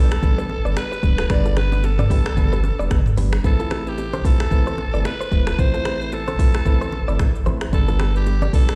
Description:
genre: afrobeats.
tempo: 112 BPM.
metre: 4/4.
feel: swing 58% on 16ths.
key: G mixolydian.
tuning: A4 = 440 Hz.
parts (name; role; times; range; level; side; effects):
raspy alto saxophone; melody; 0.0-8.8 s; G4 to D5; -30 LUFS; equal; delay.
soft electric-piano-like synth keys; accompaniment; 0.0-8.7 s; G3 to C5; -31 LUFS; equal; chorus, tremolo.
direct-recorded clean electric guitar; riff; 0.0-8.6 s; E4 to D5; -33 LUFS; equal; vibrato effect, delay.
warm sub bass; bass; 0.0-8.8 s; D1 to B1; -23 LUFS; equal; none.
afro-pop drum kit; drums; 0.1-8.8 s; finger snaps, hi-hat, kick drum, rim click, shaker, toms; -22 LUFS; equal; vintage 12-bit sampler grit.
congas and bongos; percussion; 0.2-8.5 s; none; -33 LUFS; equal; none.
room: digital ambience.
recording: played on a big sound system in a bare room, stone room reverb.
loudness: -20 LUFS.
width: mono.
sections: 0.0-8.8 A section.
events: none.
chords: 0.0 G; 3.4 Amadd9; 7.7 G.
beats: 0.23 0.76 | 1.30 1.84 2.37 2.91 | 3.44 3.98 4.51 5.05 | 5.59 6.12 6.66 7.19 | 7.73 8.26.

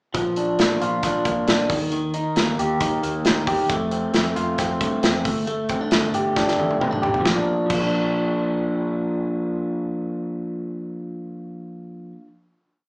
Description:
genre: jangly indie pop.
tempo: 135 BPM.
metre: 4/4.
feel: straight.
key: Bb major.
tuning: A4 = 440 Hz.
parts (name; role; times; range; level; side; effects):
electric guitar through a small old amp; arpeggios; 0.1-12.3 s; Eb3 to G4; -22 LUFS; equal; none.
vintage muted fingered electric bass; bass; 0.1-12.1 s; G1 to G2; -33 LUFS; equal; none.
modern studio drum kit; drums; 0.1-7.8 s; crash cymbal, hi-hat, kick drum, snare drum, toms; -23 LUFS; equal; none.
room: wet large studio reverb, RT60 0.8 s.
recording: band playing live in one room, small speaker sound.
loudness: -19 LUFS.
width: side -39 dB against mid.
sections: 0.1-7.3 verse; 7.3-10.8 final chord.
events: drum fill 6.4-7.3.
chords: 0.1 Bb; 1.7 Eb; 3.7 F; 5.3 Gsus2; 7.3 Bb.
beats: | 0.15 0.59 1.03 1.48 | 1.92 2.36 2.81 3.25 | 3.69 4.14 4.58 5.03 | 5.47 5.92 6.37 6.81 | 7.26 7.70 8.15 8.59 | 9.04 9.48 9.92 10.37.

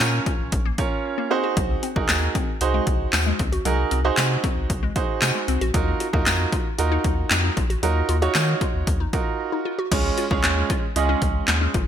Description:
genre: dance-pop.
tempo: 115 BPM.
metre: 4/4.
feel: straight.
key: Db major.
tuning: A4 = 440 Hz.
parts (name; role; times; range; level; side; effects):
bright concert grand piano; accompaniment; 0.0-11.8 s; Ab3 to Eb5; -25 LUFS; right 6 dB; sidechain pumping.
warm sub bass; bass; 0.0-11.9 s; Ab1 to Eb3; -24 LUFS; left 1 dB; sidechain pumping.
punchy analog drum machine; drums; 0.0-11.9 s; crash cymbal, handclaps, hi-hat, kick drum, snare drum; -22 LUFS; left 1 dB; gated reverb.
tambourine; percussion; 0.0-8.5 s; none; -33 LUFS; left 11 dB; none.
hollow square pluck; arpeggios; 0.3-11.8 s; Gb3 to Ab4; -31 LUFS; left 6 dB; chorus, sidechain pumping, ping-pong delay.
room: light reverb, digital ambience.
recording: bright 1980s-style digital production.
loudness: -20 LUFS.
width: side -9 dB against mid.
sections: 0.0-9.9 A section; 9.9-11.9 A section.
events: silent gap 1.0-1.6; break 9.4-9.9.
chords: 0.0 Bbm; 1.3 Ab7/C; 5.7 Ebmadd9; 9.9 Db.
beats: 0.00 0.52 1.05 | 1.57 2.09 2.61 3.13 | 3.65 4.18 4.70 5.22 | 5.74 6.26 6.79 7.31 | 7.83 8.35 8.87 9.39 | 9.92 10.44 10.96 11.48.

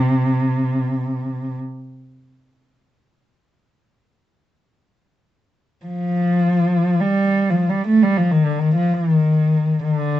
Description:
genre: caucasian folk, Caucasian lament.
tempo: free time.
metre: none.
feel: none.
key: C dorian.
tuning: A4 = 440 Hz.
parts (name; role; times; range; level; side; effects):
dark cello; solo; 0.0-10.2 s; C3 to A3; -16 LUFS; equal; none.
room: moderate small room reverb, RT60 0.5 s.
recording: nothing above 8.0 kHz.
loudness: -16 LUFS.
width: side -13 dB against mid.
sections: 0.0-4.5 A section; 4.5-10.2 A section.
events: none.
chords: none.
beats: free time.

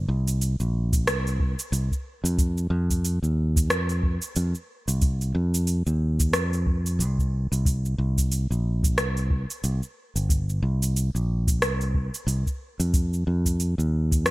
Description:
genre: sunset chillout.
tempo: 91 BPM.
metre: 4/4.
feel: swing 58% on 16ths.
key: C minor.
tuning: A4 = 441 Hz.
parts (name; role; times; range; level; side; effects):
fingered electric bass; bass; 0.0-14.3 s; G1 to F2; -24 LUFS; equal; tube saturation.
smooth R&B drum kit; drums; 0.3-14.3 s; hi-hat, rim click, shaker; -28 LUFS; right 1 dB; overdrive, gated reverb.
electronic kick drum; drums; 0.9-14.2 s; none; -24 LUFS; equal; none.
room: digital ambience.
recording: bright 1980s-style digital production.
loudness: -22 LUFS.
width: side -20 dB against mid.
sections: 0.0-14.3 A section.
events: none.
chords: none.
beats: 0.41 1.07 1.73 | 2.39 3.05 3.71 4.37 | 5.03 5.68 6.34 7.00 | 7.66 8.32 8.98 9.64 | 10.30 10.96 11.62 12.28 | 12.94 13.60 14.26.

